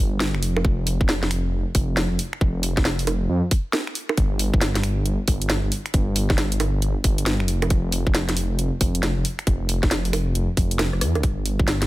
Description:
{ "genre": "UK garage, two-step garage", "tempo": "136 BPM", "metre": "4/4", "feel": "swing 64% on 16ths", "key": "unclear", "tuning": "A4 = 445 Hz", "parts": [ { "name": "dark detuned saw bass", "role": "bass", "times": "0.0-11.9 s", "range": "F1 to F2", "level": "-23 LUFS", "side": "equal", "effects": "none" }, { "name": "garage drum kit", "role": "drums", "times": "0.2-11.9 s", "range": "bongos, finger snaps, hi-hat, rim click, snare drum", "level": "-25 LUFS", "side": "right 1 dB", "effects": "none" }, { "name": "electronic kick drum", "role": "drums", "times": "0.6-11.7 s", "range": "none", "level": "-20 LUFS", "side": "equal", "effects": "none" } ], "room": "digital ambience", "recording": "none", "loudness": "-20 LUFS", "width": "side -17 dB against mid", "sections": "0.0-11.9 A section", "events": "drum fill 10.9-11.2", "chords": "none" }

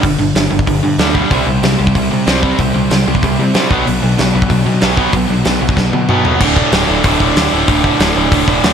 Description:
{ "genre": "punk rock", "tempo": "188 BPM", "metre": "4/4", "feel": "straight", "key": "D mixolydian", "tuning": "A4 = 442 Hz", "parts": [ { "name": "cranked stack guitar", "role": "riff", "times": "0.0-8.7 s", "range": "D2 to C4", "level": "-17 LUFS", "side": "left 10 dB", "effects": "overdrive" }, { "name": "raw garage guitar", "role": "riff", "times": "0.0-8.7 s", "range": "D2 to C4", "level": "-17 LUFS", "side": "right 11 dB", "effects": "overdrive" }, { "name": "growling picked electric bass", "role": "bass", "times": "0.0-8.7 s", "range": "D1 to C3", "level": "-19 LUFS", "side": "equal", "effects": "overdrive" }, { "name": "big rock drum kit", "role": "drums", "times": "0.0-8.7 s", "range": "crash cymbal, hi-hat, kick drum, snare drum, toms", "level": "-15 LUFS", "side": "equal", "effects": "none" }, { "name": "fuzz guitar", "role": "riff", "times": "1.3-6.3 s", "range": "B2 to C5", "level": "-20 LUFS", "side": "right 1 dB", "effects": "distortion" } ], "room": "little or no reverb", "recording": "none", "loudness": "-10 LUFS", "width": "side -7 dB against mid", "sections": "0.0-6.4 A section; 6.4-8.7 B section", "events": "drum fill 5.8-6.4", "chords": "0.0 G5; 1.3 C; 3.7 Bm; 6.4 D5" }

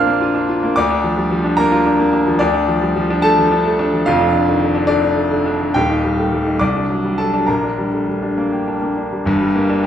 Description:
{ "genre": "classical, virtuoso piano study", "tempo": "66-74 BPM (dotted quarters)", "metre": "6/8", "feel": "rubato", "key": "G minor", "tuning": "A4 = 439 Hz", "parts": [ { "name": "bright grand piano", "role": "solo", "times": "0.0-9.9 s", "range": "Eb1 to F6", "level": "-14 LUFS", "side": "equal", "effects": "none" } ], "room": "wet large studio reverb, RT60 1.2 s", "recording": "heard from further back in the room", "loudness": "-14 LUFS", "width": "side -10 dB against mid", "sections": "0.0-9.3 A section", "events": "none", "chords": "0.0 Bb; 0.8 Bb/D; 2.4 Dm; 4.1 Dm/F; 5.8 Eb; 6.6 D7/C; 7.5 Gm/Bb; 9.3 Gm" }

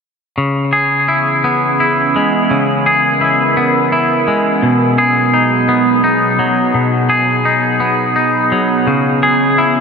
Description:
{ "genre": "rock", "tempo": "57 BPM (dotted quarters)", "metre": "6/8", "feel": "straight", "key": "unclear", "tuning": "A4 = 440 Hz", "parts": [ { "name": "warbly tape-like pad", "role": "sustained chords", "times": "1.2-9.8 s", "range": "B2 to A#4", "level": "-17 LUFS", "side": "right 3 dB", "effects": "chorus, built-in reverb, phaser" }, { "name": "twangy electric guitar", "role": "arpeggios", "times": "0.4-9.8 s", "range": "B2 to G#4", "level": "-12 LUFS", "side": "left 1 dB", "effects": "ping-pong delay" } ], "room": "wet huge ambient reverb, RT60 9.7 s", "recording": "dreamy mix soaked in reverb", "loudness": "-11 LUFS", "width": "side -5 dB against mid", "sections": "0.4-9.8 A section", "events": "none", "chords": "0.4 C#m7; 4.6 G#m7/B; 8.9 C#m7" }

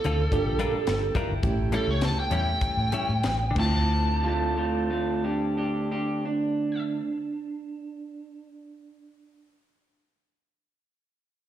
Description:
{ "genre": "straight-eighth soul blues", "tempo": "90-111 BPM", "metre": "4/4", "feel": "straight", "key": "D minor", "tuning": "A4 = 441 Hz", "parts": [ { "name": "lead guitar through a small cranked amp", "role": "melody", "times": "0.0-6.8 s", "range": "A4 to A5", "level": "-30 LUFS", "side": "right 2 dB", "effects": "overdrive, plate reverb, slapback echo" }, { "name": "reed electric piano", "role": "accompaniment", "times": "0.0-6.8 s", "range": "A3 to A4", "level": "-34 LUFS", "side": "right 3 dB", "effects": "overdrive, fast tremolo, plate reverb, slapback echo" }, { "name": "mellow horn section", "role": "sustained chords", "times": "0.0-6.8 s", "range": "Bb3 to A5", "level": "-41 LUFS", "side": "equal", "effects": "plate reverb" }, { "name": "direct-recorded clean electric guitar", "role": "stabs", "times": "0.0-7.2 s", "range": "A2 to Bb4", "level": "-32 LUFS", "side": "left 3 dB", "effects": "plate reverb, slapback echo" }, { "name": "tight funk drum kit", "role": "drums", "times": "0.0-3.7 s", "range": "crash cymbal, hi-hat, kick drum, snare drum", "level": "-31 LUFS", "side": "left 1 dB", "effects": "none" }, { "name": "vintage muted fingered electric bass", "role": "bass", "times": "0.1-6.8 s", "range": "G1 to A2", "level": "-28 LUFS", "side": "equal", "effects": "none" }, { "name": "electric guitar through a small old amp", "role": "second line", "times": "0.3-9.5 s", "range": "A3 to G4", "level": "-30 LUFS", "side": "right 3 dB", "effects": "plate reverb" } ], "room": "light reverb", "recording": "live gig heard through the venue's PA, recital hall reverb", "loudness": "-24 LUFS", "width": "side -11 dB against mid", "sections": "0.0-3.9 A section; 3.9-9.2 B section", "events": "slowing down 0.0-3.9", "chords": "0.3 Gm7; 1.4 A7; 3.6 Dm7" }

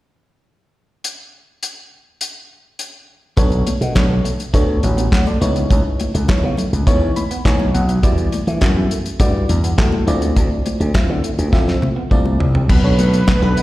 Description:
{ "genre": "early-eighties boogie funk", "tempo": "103 BPM", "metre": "4/4", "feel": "straight", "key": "B minor", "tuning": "A4 = 442 Hz", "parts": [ { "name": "damped 70s drum kit", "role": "drums", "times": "1.0-13.6 s", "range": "crash cymbal, handclaps, hi-hat, kick drum, snare drum, toms", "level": "-17 LUFS", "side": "equal", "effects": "none" }, { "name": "FM electric piano", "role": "accompaniment", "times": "3.4-13.6 s", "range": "G3 to B5", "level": "-22 LUFS", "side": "left 1 dB", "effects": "chorus, plate reverb, slapback echo" }, { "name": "electric guitar at the edge of break-up", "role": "riff", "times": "3.4-13.6 s", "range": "A3 to E4", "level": "-29 LUFS", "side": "right 5 dB", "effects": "wide subtle chorus, slapback echo" }, { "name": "slap bass with an envelope filter", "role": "bass", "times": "3.4-13.6 s", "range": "A1 to E3", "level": "-16 LUFS", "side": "equal", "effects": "none" }, { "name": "congas", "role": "percussion", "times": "3.4-13.4 s", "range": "none", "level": "-26 LUFS", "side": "left 2 dB", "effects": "slapback echo" }, { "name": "fat analog lead", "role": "melody", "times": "12.7-13.6 s", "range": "B4", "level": "-22 LUFS", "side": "right 2 dB", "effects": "plate reverb, slapback echo" } ], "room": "light reverb", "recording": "live gig heard through the venue's PA, recital hall reverb", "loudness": "-14 LUFS", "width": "side -17 dB against mid", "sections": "1.0-3.4 A section; 3.4-12.7 B section", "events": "FM electric piano fill 6.9-8.0; drum fill 11.5-12.7", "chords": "1.0 N.C.; 3.4 Bm9; 5.4 C#m9; 8.0 Em9; 10.1 Dm9; 12.7 Bm9" }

